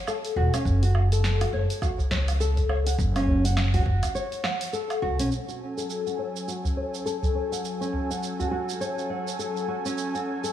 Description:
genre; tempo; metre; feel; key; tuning
organic downtempo; 103 BPM; 4/4; swing 59% on 16ths; F# minor; A4 = 436 Hz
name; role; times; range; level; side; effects
flamenco guitar; arpeggios; 0.0-10.5 s; C#4 to F#5; -29 LUFS; left 1 dB; low-pass filter, digital delay
deep house drum kit; drums; 0.1-10.5 s; hi-hat, shaker, snare drum, woodblock; -33 LUFS; right 3 dB; none
upright bass; bass; 0.4-5.3 s; E1 to C#2; -23 LUFS; equal; none
electronic kick drum; drums; 0.7-4.1 s; none; -28 LUFS; equal; none
udu; percussion; 2.0-8.5 s; none; -28 LUFS; equal; none
warm analog pad; sustained chords; 5.3-10.5 s; F#3 to G#5; -32 LUFS; equal; chorus, sidechain pumping
room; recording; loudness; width
light reverb; small room ambience; -24 LUFS; side -11 dB against mid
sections
0.0-5.3 A section; 5.3-10.5 B section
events
break 4.1-5.3; filter sweep on nylon-string guitar 5.3-10.5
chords
0.0 F#m

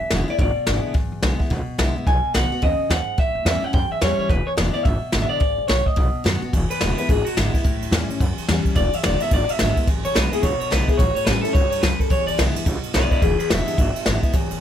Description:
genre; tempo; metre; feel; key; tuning
rockabilly; 215 BPM; 4/4; swing 62% on 8ths; E mixolydian; A4 = 440 Hz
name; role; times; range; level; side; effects
electric guitar through a small old amp; melody; 0.0-14.3 s; E4 to G#5; -24 LUFS; left 1 dB; analog delay
picked steel-string acoustic guitar; accompaniment; 0.0-14.6 s; E2 to F#4; -27 LUFS; left 3 dB; none
upright bass; bass; 0.0-14.6 s; E1 to F#2; -23 LUFS; equal; none
jazz brush drum kit; drums; 0.1-14.6 s; hi-hat, kick drum, ride cymbal, snare drum; -21 LUFS; equal; none
room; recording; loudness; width
light reverb; none; -18 LUFS; side -10 dB against mid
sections
0.0-6.5 A section; 6.5-14.6 B section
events
clean electric guitar solo 6.5-14.6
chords
0.0 E7; 2.1 B7; 3.2 A7; 4.3 E7; 6.0 B7; 6.5 E7; 7.6 A7; 8.8 E7; 11.0 A7; 12.1 E7

